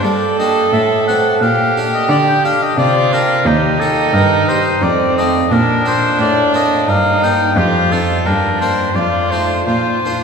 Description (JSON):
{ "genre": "classical, baroque-style sonata movement with continuo", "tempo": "88 BPM", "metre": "3/4", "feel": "straight", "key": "G minor, Bb major from 3.5 s", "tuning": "A4 = 438 Hz", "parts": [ { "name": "clear oboe", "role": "melody", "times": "0.0-10.1 s", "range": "G4 to G5", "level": "-16 LUFS", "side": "left 4 dB", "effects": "none" }, { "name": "rich violin", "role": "second line", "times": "0.0-10.2 s", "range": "C4 to A4", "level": "-17 LUFS", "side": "right 4 dB", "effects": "none" }, { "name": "harpsichord", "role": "accompaniment", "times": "0.0-10.2 s", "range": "Eb2 to Bb4", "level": "-19 LUFS", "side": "equal", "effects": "none" }, { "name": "rich cello", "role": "bass", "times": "0.0-10.2 s", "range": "Eb2 to G3", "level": "-19 LUFS", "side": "right 1 dB", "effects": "none" } ], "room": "wet cathedral reverb, RT60 4.4 s", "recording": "recorded in a church or concert hall", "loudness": "-12 LUFS", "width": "side -6 dB against mid", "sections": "0.0-10.2 A section", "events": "none", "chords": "0.0 Gm; 0.7 F#dim/A; 1.4 Gm/Bb; 3.5 Eb; 4.8 F7; 5.5 Bb; 6.9 Eb/G; 7.6 F; 8.3 Gm; 9.0 F7; 9.7 Bb" }